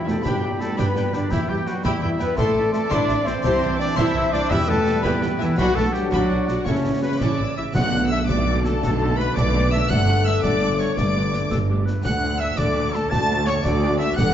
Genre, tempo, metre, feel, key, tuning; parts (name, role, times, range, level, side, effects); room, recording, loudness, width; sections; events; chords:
cinematic, heroic adventure film score; 112 BPM (dotted quarters); 6/8; straight; E minor, B minor from 7.8 s; A4 = 440 Hz
rich chamber violin section; melody; 0.0-14.3 s; D5 to A6; -31 LUFS; left 3 dB
bright oboe; second line; 0.0-14.3 s; A4 to B5; -33 LUFS; equal
hollow concert flute; second line; 0.0-14.3 s; A4 to C6; -32 LUFS; left 2 dB
warm symphonic violin section; second line; 0.0-14.3 s; A4 to E6; -35 LUFS; left 3 dB
clear trombone section; sustained chords; 0.0-14.3 s; C#3 to D4; -30 LUFS; right 2 dB
dark French horn section; sustained chords; 0.0-14.3 s; C#4 to E5; -26 LUFS; left 4 dB
clear trumpet; stabs; 0.0-14.3 s; C#4 to A5; -29 LUFS; right 1 dB
warm symphonic cello section; bass; 0.0-14.3 s; D2 to E4; -27 LUFS; right 2 dB
mellow clarinet; second line; 0.1-7.6, 11.5-12.0 s; G4 to G5; -34 LUFS; left 1 dB
rich symphonic viola section; accompaniment; 0.1-14.2 s; G3 to A4; -31 LUFS; right 1 dB
clear symphonic double bass section; bass; 0.1-14.3 s; E1 to G2; -26 LUFS; right 2 dB
concert snare drum, concert bass drum and clash cymbals; drums; 0.1-14.3 s; -28 LUFS; equal
timpani; percussion; 4.5-5.0, 7.7-8.3 s; E2 to B2; -28 LUFS; equal
moderate concert hall reverb, RT60 2.3 s; dark, warm production, nothing above 7.7 kHz; -18 LUFS; side -10 dB against mid
0.0-7.8 A section; 7.8-14.3 B section
0.3 G; 1.3 Em; 2.4 Am; 3.4 C; 4.5 Em; 5.6 Bm; 6.7 A; 7.8 Bm7; 9.9 Gadd9; 12.0 D